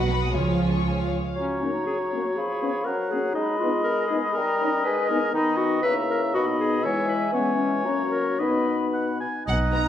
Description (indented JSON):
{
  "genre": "quick classical-period movement for symphony orchestra",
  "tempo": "110-123 BPM",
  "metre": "2/4",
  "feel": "rubato",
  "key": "F# major, B major from 5.3 s",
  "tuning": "A4 = 441 Hz",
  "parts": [
    { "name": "warm studio violin section", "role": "melody", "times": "0.0-1.2, 9.5-9.9 s", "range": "C#5 to A#5", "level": "-32 LUFS", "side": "left 2 dB", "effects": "none" },
    { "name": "warm studio violin section", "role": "second line", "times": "0.0-1.4, 9.7-9.9 s", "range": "F#4 to D#6", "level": "-32 LUFS", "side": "left 5 dB", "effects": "none" },
    { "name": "rich studio viola section", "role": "accompaniment", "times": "0.0-1.1, 9.7-9.9 s", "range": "B3 to F#4", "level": "-31 LUFS", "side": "right 2 dB", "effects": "none" },
    { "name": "rich studio double bass section", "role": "bass", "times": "0.0-1.2, 9.5-9.9 s", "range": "B1 to C#2", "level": "-27 LUFS", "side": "right 2 dB", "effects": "none" },
    { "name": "rich studio cello section", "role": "bass", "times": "0.1-1.1, 9.5-9.9 s", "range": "B2 to F#3", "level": "-28 LUFS", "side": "right 2 dB", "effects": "none" },
    { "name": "clear clarinet", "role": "second line", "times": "1.4-8.9 s", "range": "B3 to C#5", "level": "-27 LUFS", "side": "left 2 dB", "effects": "none" },
    { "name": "clear oboe", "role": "second line", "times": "1.4-9.9 s", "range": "C#5 to G#5", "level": "-30 LUFS", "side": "equal", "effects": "none" },
    { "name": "mellow concert flute", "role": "second line", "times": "1.4-9.9 s", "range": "G#5 to F#6", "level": "-31 LUFS", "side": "left 2 dB", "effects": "none" },
    { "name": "warm bassoon", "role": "accompaniment", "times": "1.4-9.9 s", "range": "B2 to D#4", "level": "-28 LUFS", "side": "equal", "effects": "none" },
    { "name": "dark French horn section", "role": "sustained chords", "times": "1.6-9.9 s", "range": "G#3 to E4", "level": "-28 LUFS", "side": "left 3 dB", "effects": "none" }
  ],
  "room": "wet recital hall reverb, RT60 1.5 s",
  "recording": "dark, warm production",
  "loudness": "-22 LUFS",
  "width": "side -10 dB against mid",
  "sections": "0.0-1.4 A section; 1.4-9.5 B section",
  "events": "none",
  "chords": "0.3 C#; 1.4 F#; 2.4 C#7/E#; 2.9 F#; 3.4 G#m; 4.4 D#7/G; 4.9 G#m; 5.3 B/D#; 5.8 A#dim/C#; 6.3 B; 6.8 E; 7.3 C#m/E; 7.9 F#; 8.4 B"
}